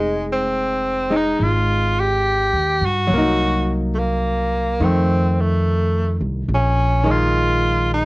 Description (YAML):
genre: jazz ballad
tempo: 70 BPM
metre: 4/4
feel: swing 66% on 8ths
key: F minor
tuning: A4 = 440 Hz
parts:
  - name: bright tenor saxophone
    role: melody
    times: 0.0-8.1 s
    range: Ab3 to G4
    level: -20 LUFS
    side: equal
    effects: cassette tape
  - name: archtop guitar, miked and amplified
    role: accompaniment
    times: 0.0-8.1 s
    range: Eb3 to Eb4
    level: -23 LUFS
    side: left 1 dB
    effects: cassette tape
  - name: upright bass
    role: bass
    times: 0.0-8.1 s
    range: F1 to G2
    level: -20 LUFS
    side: equal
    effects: none
room: light reverb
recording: home recording on cassette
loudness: -16 LUFS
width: side -22 dB against mid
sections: 0.0-8.1 A section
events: none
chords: 0.0 Fm9; 3.1 Cm7b5; 4.8 F7; 6.5 Bb7sus4